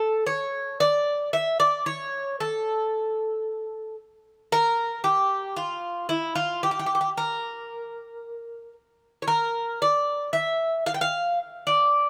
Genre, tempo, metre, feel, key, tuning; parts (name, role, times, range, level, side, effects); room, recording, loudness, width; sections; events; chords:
greek folk; 113 BPM (eighths); 9/8; straight; A phrygian dominant; A4 = 439 Hz
Greek bouzouki; solo; 0.0-12.1 s; E4 to G5; -26 LUFS; equal
light reverb; -25 LUFS; mono
0.0-12.1 A section